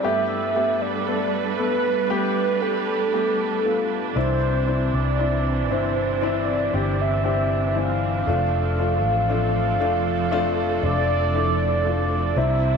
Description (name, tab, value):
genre	pop ballad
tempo	58 BPM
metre	4/4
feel	straight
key	unclear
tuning	A4 = 439 Hz
part	mellow horn-like synth lead	melody	0.0-12.8 s	A4 to F5	-24 LUFS	right 2 dB	chorus, phaser
part	clear baby grand piano	accompaniment	0.0-12.8 s	G2 to A4	-25 LUFS	left 9 dB	none
part	rich studio string section	sustained chords	0.0-12.8 s	C3 to B4	-27 LUFS	right 12 dB	none
part	fretless electric bass	bass	4.2-12.8 s	F1 to C2	-24 LUFS	right 1 dB	none
room	moderate echo chamber reverb, RT60 2.3 s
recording	1960s-style stereo with parts hard left and right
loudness	-20 LUFS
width	side -6 dB against mid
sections	0.0-12.8 A section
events	none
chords	0.0 Gadd9; 4.2 Cadd9; 8.3 F6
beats	| 0.04 1.06 2.09 3.12 | 4.16 5.20 6.23 7.25 | 8.28 9.30 10.32 11.34 | 12.36